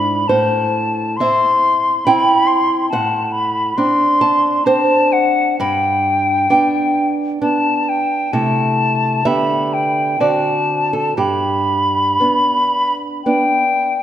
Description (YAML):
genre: romantic duo for flute and classical guitar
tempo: 55-71 BPM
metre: 3/4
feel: rubato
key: G major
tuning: A4 = 440 Hz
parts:
  - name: silver concert flute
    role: melody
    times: 0.0-14.0 s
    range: F#5 to C6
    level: -16 LUFS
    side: left 2 dB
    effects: none
  - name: nylon-string guitar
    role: accompaniment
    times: 0.0-14.0 s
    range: G2 to B5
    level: -18 LUFS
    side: right 2 dB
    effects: none
room: moderate concert hall reverb, RT60 1.8 s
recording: none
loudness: -13 LUFS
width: side -11 dB against mid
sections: 0.0-14.0 A section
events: none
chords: 0.3 Am; 2.9 D7/A; 5.6 G; 8.3 Am/C; 9.3 G/D; 10.2 D7; 11.2 G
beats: | 0.29 1.19 2.06 | 2.91 3.78 4.67 | 5.60 6.50 7.42 | 8.34 9.27 10.21 | 11.19 12.21 13.27